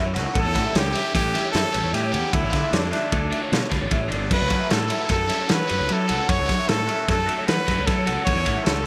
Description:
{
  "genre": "math rock and midwest emo",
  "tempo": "152 BPM",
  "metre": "5/4",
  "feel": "straight",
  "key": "unclear",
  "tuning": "A4 = 440 Hz",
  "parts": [
    { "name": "warm trumpet", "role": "melody", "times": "0.0-8.9 s", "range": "D4 to C#5", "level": "-28 LUFS", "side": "equal", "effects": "none" },
    { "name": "electric guitar through a small old amp", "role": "arpeggios", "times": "0.0-8.9 s", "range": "A4 to F#5", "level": "-33 LUFS", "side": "equal", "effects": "lush chorus" },
    { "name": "cranked stack guitar", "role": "riff", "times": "0.0-8.7 s", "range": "D3 to G4", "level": "-33 LUFS", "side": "equal", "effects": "overdrive, phaser" },
    { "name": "fuzz fingered electric bass", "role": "bass", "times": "0.0-8.8 s", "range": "G1 to F#3", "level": "-29 LUFS", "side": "equal", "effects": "overdrive" },
    { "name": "loose indie drum kit", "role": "drums", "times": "0.2-8.8 s", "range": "crash cymbal, kick drum, ride cymbal, snare drum", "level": "-26 LUFS", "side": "equal", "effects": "gated reverb" }
  ],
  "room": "moderate plate reverb, RT60 2.0 s",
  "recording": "bright 1980s-style digital production",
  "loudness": "-22 LUFS",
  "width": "mono",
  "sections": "0.0-8.9 A section",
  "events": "none",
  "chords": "0.4 A7; 2.3 Dmadd9; 4.3 F#m7; 8.3 A7",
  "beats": "| 0.35 0.75 1.15 1.54 1.94 | 2.33 2.73 3.12 3.52 3.91 | 4.31 4.71 5.10 5.50 5.89 | 6.29 6.68 7.08 7.47 7.87 | 8.27 8.66"
}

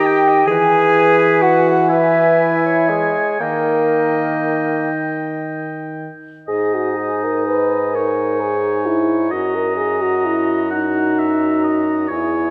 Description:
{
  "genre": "classical, slow romantic movement for wind quintet",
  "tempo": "38-45 BPM (dotted quarters)",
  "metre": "6/8",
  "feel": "rubato",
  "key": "G# minor",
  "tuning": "A4 = 441 Hz",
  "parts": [
    { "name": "silver concert flute", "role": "melody", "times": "0.0-12.5 s", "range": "G#4 to A#5", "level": "-26 LUFS", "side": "equal", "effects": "none" },
    { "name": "warm oboe", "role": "second line", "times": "0.0-12.5 s", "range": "C#5 to G#5", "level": "-26 LUFS", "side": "equal", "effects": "none" },
    { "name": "clear clarinet", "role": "accompaniment", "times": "0.0-12.5 s", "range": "D#4 to G5", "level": "-27 LUFS", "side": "equal", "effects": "none" },
    { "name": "warm French horn", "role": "accompaniment", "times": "0.0-12.5 s", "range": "D#3 to B4", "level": "-22 LUFS", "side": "equal", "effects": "none" },
    { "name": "warm bassoon", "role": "bass", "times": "0.0-12.5 s", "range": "E2 to G#4", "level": "-21 LUFS", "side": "equal", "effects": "none" }
  ],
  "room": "wet concert hall reverb, RT60 2.0 s",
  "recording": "dark, warm production",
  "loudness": "-17 LUFS",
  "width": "mono",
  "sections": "0.0-6.5 A section; 6.5-12.5 B section",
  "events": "none",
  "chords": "0.5 E; 3.4 D#; 6.5 G#5; 9.3 D#m/F#",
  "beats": "| 0.47 1.90 | 3.40 4.93 | 6.47 7.94 | 9.32 10.73 | 12.10"
}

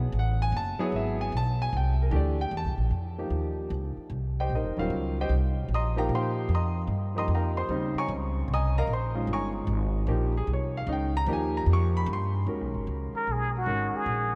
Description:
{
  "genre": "modal jazz",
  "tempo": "151 BPM",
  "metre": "3/4",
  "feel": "swing 67% on 8ths",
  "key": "F minor",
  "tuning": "A4 = 436 Hz",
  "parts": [
    { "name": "warm concert grand piano", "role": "accompaniment", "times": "0.0-14.4 s", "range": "Db3 to Eb6", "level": "-33 LUFS", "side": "equal", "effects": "none" },
    { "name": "upright bass", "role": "bass", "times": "0.0-14.4 s", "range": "Eb1 to Bb2", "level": "-30 LUFS", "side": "equal", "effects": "none" },
    { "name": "trumpet with plunger mute", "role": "melody", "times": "13.2-14.4 s", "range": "F#4 to A#4", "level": "-30 LUFS", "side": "equal", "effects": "none" }
  ],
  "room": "moderate cathedral reverb, RT60 6.0 s",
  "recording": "in a vast, echoing space",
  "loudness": "-28 LUFS",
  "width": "mono",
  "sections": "0.0-2.9 A section; 2.9-12.5 A section; 12.5-14.4 A section",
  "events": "muted trumpet solo 12.5-14.4",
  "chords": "0.0 F#m9; 1.7 C7; 2.9 F9sus4; 7.7 Eb9sus4; 12.5 G#m11",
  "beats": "0.13 | 0.53 0.93 1.32 | 1.72 2.12 2.52 | 2.91 3.31 3.71 | 4.11 4.50 4.90 | 5.30 5.70 6.10 | 6.49 6.89 7.29 | 7.69 8.08 8.48 | 8.88 9.28 9.68 | 10.07 10.47 10.87 | 11.27 11.67 12.06 | 12.46 12.86 13.26 | 13.66 14.06"
}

